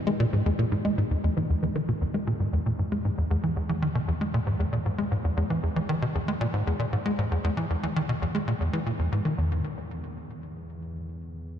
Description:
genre	ambient, sequencer-driven space music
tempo	116 BPM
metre	4/4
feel	straight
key	E lydian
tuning	A4 = 441 Hz
part	tight sequencer bass	riff	0.1-9.6 s	E2 to G#3	-25 LUFS	equal	analog chorus, ping-pong delay
part	analog drone	bass	2.2-10.9 s	E2	-40 LUFS	equal	none
room	wet cathedral reverb, RT60 5.2 s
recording	in a vast, echoing space, nothing above 11.0 kHz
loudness	-25 LUFS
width	side -9 dB against mid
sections	0.0-1.1 A section; 1.1-9.4 B section; 9.4-11.6 C section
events	none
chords	none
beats	0.07 0.59 | 1.10 1.62 2.14 2.66 | 3.17 3.69 4.21 4.73 | 5.24 5.76 6.28 6.79 | 7.31 7.83 8.35 8.86 | 9.38 9.90 10.42

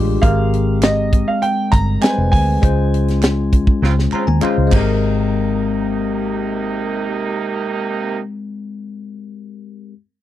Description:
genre	lush 1970s-style soul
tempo	100 BPM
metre	4/4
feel	straight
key	Ab major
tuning	A4 = 437 Hz
part	bell-like tine electric piano	accompaniment	0.0-9.9 s	G3 to Bb5	-20 LUFS	left 4 dB	phaser
part	vintage muted fingered electric bass	bass	0.0-8.9 s	F1 to Eb2	-18 LUFS	equal	none
part	warm baby grand piano	melody	0.2-4.4 s	Eb5 to Bb5	-21 LUFS	right 2 dB	none
part	tight funk drum kit	drums	0.2-4.9 s	crash cymbal, hi-hat, kick drum, snare drum, toms	-16 LUFS	equal	none
part	group handclap	percussion	0.8-5.3 s	none	-31 LUFS	right 10 dB	none
part	clear horn section	stabs	3.8-8.2 s	C3 to F4	-23 LUFS	right 7 dB	none
room	little or no reverb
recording	dry, close 1970s-style studio recording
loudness	-15 LUFS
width	side -13 dB against mid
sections	0.0-5.0 A section; 5.0-7.4 B section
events	band accent 2.6-5.0; drum fill 3.8-5.0; tine electric piano fill 3.8-5.0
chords	0.2 Abmaj9; 2.6 Dbmaj7; 4.7 Abmaj9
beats	| 0.23 0.83 1.43 2.02 | 2.62 3.23 3.83 4.42 | 5.03 5.63 6.23 6.83

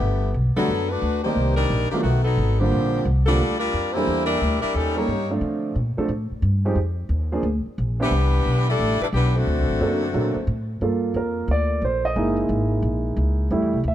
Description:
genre	jazz, big band swing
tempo	178 BPM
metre	4/4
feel	swing 65% on 8ths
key	G minor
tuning	A4 = 440 Hz
part	edgy saxophone section	melody	0.0-5.3, 8.0-10.5 s	D3 to Db5	-24 LUFS	left 2 dB	none
part	warm grand piano	accompaniment	0.0-13.9 s	D3 to F#5	-25 LUFS	right 2 dB	none
part	upright bass	bass	0.0-13.9 s	F#1 to D3	-22 LUFS	equal	none
room	light reverb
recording	dark, warm production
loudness	-20 LUFS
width	side -12 dB against mid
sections	0.0-10.8 A section; 10.8-13.9 B section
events	grand piano solo 10.8-13.9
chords	0.0 Gmaj9; 1.4 Cm11; 2.0 B7#11; 2.7 Bb69; 4.1 Em7b5; 4.7 Eb7#11; 5.4 Dm7; 6.8 Fm7; 7.4 Bbadd9; 8.1 Cmaj9; 9.5 D7b13; 10.8 Gm7; 12.2 F#13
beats	| 0.01 0.35 0.69 1.02 | 1.36 1.70 2.04 2.38 | 2.71 3.05 3.39 3.73 | 4.07 4.40 4.74 5.08 | 5.42 5.75 6.09 6.43 | 6.76 7.10 7.44 7.78 | 8.11 8.45 8.79 9.12 | 9.46 9.80 10.13 10.47 | 10.81 11.15 11.48 11.82 | 12.16 12.49 12.83 13.17 | 13.51 13.85

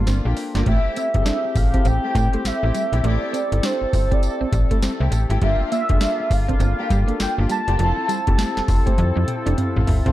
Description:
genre	R&B, new jack swing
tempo	101 BPM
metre	4/4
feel	swing 62% on 16ths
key	unclear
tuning	A4 = 441 Hz
part	soft electric-piano-like synth keys	accompaniment	0.0-10.1 s	Bb3 to C6	-29 LUFS	left 3 dB	chorus
part	clear woodwind section	sustained chords	0.0-10.1 s	F3 to A4	-33 LUFS	left 1 dB	none
part	slap-like FM bass	bass	0.0-10.1 s	F1 to A2	-20 LUFS	equal	none
part	electric guitar at the edge of break-up	riff	0.1-10.1 s	F3 to E4	-29 LUFS	right 6 dB	analog chorus
part	booming analog drum machine	drums	0.1-10.1 s	hi-hat, kick drum, snare drum, tambourine, toms	-21 LUFS	equal	none
part	dark symphonic string section	stabs	0.3-10.1 s	A3 to A4	-30 LUFS	left 2 dB	none
part	warm velvety synth lead	melody	0.7-9.5 s	C5 to A5	-24 LUFS	equal	chorus
room	digital ambience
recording	dark, warm production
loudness	-18 LUFS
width	side -14 dB against mid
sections	0.0-10.1 A section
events	synth keys fill 8.4-10.1; drum fill 9.0-10.1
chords	0.0 Gm7; 0.7 Am7; 5.4 Gm7; 7.8 Fmaj7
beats	0.07 | 0.66 1.26 1.85 2.44 | 3.04 3.63 4.23 4.82 | 5.42 6.01 6.60 7.20 | 7.79 8.38 8.98 9.57

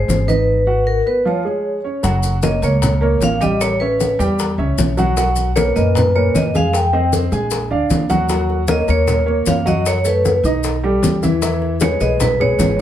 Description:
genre	Afro-Cuban jazz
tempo	154 BPM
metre	4/4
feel	straight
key	F# major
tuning	A4 = 440 Hz
part	vibraphone with medium hard mallets	melody	0.0-12.8 s	Bb4 to G5	-19 LUFS	equal	none
part	warm upright piano	accompaniment	0.0-12.7 s	A#2 to G#5	-19 LUFS	right 1 dB	none
part	upright bass	bass	0.0-12.8 s	F#1 to F#2	-19 LUFS	equal	none
part	bongos	percussion	0.1-12.8 s	none	-26 LUFS	left 6 dB	none
part	congas	percussion	0.1-12.8 s	none	-21 LUFS	equal	none
part	maracas	percussion	0.1-12.8 s	none	-30 LUFS	left 6 dB	none
room	moderate club reverb, RT60 0.8 s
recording	heard from further back in the room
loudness	-14 LUFS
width	side -11 dB against mid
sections	0.0-2.0 A section; 2.0-12.8 B section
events	break 0.5-2.0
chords	0.5 Abm7; 1.3 Db; 2.0 F#; 3.6 A9; 5.2 B5; 6.7 Fm9; 7.5 A#7; 8.3 D#m7; 9.9 F#m; 10.6 Baug7; 11.4 E6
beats	0.09 | 0.48 0.87 1.26 1.65 | 2.04 2.44 2.83 3.22 | 3.61 4.00 4.39 4.78 | 5.17 5.56 5.95 6.34 | 6.74 7.12 7.52 7.91 | 8.30 8.69 9.08 9.47 | 9.86 10.25 10.64 11.04 | 11.43 11.82 12.21 12.60

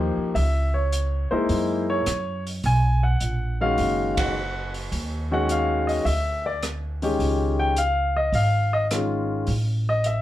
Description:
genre	jazz piano trio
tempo	105 BPM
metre	4/4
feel	swing 69% on 8ths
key	unclear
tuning	A4 = 440 Hz
part	warm baby grand piano	melody	0.0-10.2 s	D#3 to Ab5	-23 LUFS	left 1 dB	plate reverb
part	upright bass	bass	0.0-10.2 s	F#1 to Gb2	-24 LUFS	right 1 dB	none
part	open jazz drum kit	drums	0.4-10.2 s	hi-hat, kick drum, ride cymbal, rim click	-33 LUFS	right 1 dB	none
room	moderate studio ambience, RT60 0.5 s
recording	heard from further back in the room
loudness	-21 LUFS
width	side -14 dB against mid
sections	0.0-10.2 A section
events	band accent 4.1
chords	0.3 Dbm; 1.5 Gb13; 2.6 Bmaj7; 4.9 Ebm7; 6.1 E7(no3)/D; 7.2 Dbadd9; 9.5 A5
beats	| 0.35 0.92 1.49 2.06 | 2.63 3.20 3.77 4.34 | 4.92 5.49 6.06 6.63 | 7.20 7.77 8.34 8.91 | 9.48 10.05

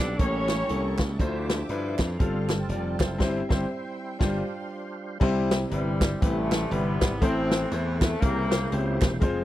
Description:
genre	uptempo gospel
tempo	120 BPM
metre	4/4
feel	swing 60% on 8ths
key	C major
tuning	A4 = 440 Hz
part	breathy tenor saxophone	melody	0.0-1.0 s	C#4 to D4	-30 LUFS	right 3 dB	none
part	warm horn section	melody	0.0-1.2, 5.7-9.2 s	Bb2 to D5	-31 LUFS	left 2 dB	none
part	clear grand piano	accompaniment	0.0-9.4 s	G2 to D5	-30 LUFS	left 3 dB	none
part	tonewheel organ	sustained chords	0.0-9.4 s	C3 to A5	-36 LUFS	right 4 dB	slow rotary speaker, overdrive, chorus vibrato
part	warm studio string section	sustained chords	0.0-5.2 s	C5 to D6	-44 LUFS	left 1 dB	none
part	glassy slap bass	bass	0.0-9.4 s	E1 to G2	-29 LUFS	equal	none
part	swinging big-band drum kit	drums	0.2-9.4 s	crash cymbal, hi-hat, kick drum, snare drum	-25 LUFS	equal	none
part	group handclap	percussion	0.5-9.1 s	none	-38 LUFS	right 10 dB	none
room	little or no reverb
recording	dry, close 1970s-style studio recording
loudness	-23 LUFS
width	side -14 dB against mid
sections	0.0-5.2 A section; 5.2-9.4 B section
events	band accent 3.2-5.2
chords	0.2 A7b9; 1.2 Dm9; 2.2 G9sus4; 3.2 C/G; 4.2 G7sus4; 5.2 C; 7.2 Am; 8.2 C7b9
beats	0.19 0.69 | 1.19 1.70 2.20 2.70 | 3.20 3.71 4.21 4.71 | 5.21 5.71 6.21 6.72 | 7.22 7.72 8.22 8.72 | 9.22

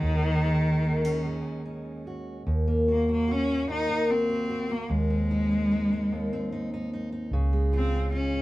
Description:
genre	acoustic folk-pop ballad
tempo	74 BPM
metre	3/4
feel	straight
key	Eb dorian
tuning	A4 = 439 Hz
part	rich cello	melody	0.0-8.4 s	Eb3 to Eb4	-27 LUFS	equal	none
part	fingerpicked steel-string acoustic guitar	accompaniment	0.0-8.4 s	Eb2 to Gb4	-29 LUFS	equal	none
part	vintage muted fingered electric bass	bass	0.0-8.4 s	Db2 to Eb2	-28 LUFS	equal	none
room	light reverb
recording	band playing live in one room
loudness	-24 LUFS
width	side -17 dB against mid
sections	0.0-2.5 A section; 2.5-8.4 B section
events	none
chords	0.0 Ebm7; 2.5 Ebm; 4.9 Ab/Eb; 7.3 Db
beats	| 0.02 0.83 1.65 | 2.47 3.28 4.09 | 4.90 5.71 6.51 | 7.31 8.12

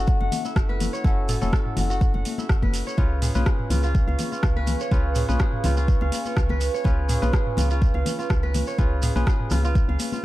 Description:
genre	afro house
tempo	124 BPM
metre	4/4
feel	swing 54% on 16ths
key	unclear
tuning	A4 = 436 Hz
part	dark analog pad	sustained chords	0.0-10.2 s	A4 to C#6	-33 LUFS	right 5 dB	chorus, phaser, sidechain pumping
part	kora	arpeggios	0.0-10.2 s	E4 to F#5	-32 LUFS	equal	sidechain pumping, ping-pong delay
part	bell-like tine electric piano	stabs	0.0-10.2 s	C#4 to B4	-33 LUFS	left 2 dB	sidechain pumping, ping-pong delay
part	woody FM bass	bass	0.0-10.0 s	E1 to C#2	-24 LUFS	equal	sidechain pumping
part	electronic kick drum	drums	0.1-9.9 s	none	-21 LUFS	equal	none
part	shekere	percussion	0.1-10.2 s	none	-38 LUFS	right 6 dB	none
part	congas	percussion	0.2-10.2 s	none	-31 LUFS	left 4 dB	none
part	afro-pop drum kit	drums	0.3-10.1 s	hi-hat, rim click, toms	-31 LUFS	right 1 dB	none
room	little or no reverb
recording	dark, warm production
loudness	-20 LUFS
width	side -16 dB against mid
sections	0.0-10.2 A section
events	none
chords	0.0 F#m7; 3.0 C#7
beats	0.08 0.56 | 1.04 1.53 2.01 2.50 | 2.98 3.46 3.95 4.43 | 4.92 5.40 5.88 6.37 | 6.85 7.34 7.82 8.30 | 8.79 9.27 9.76 10.24

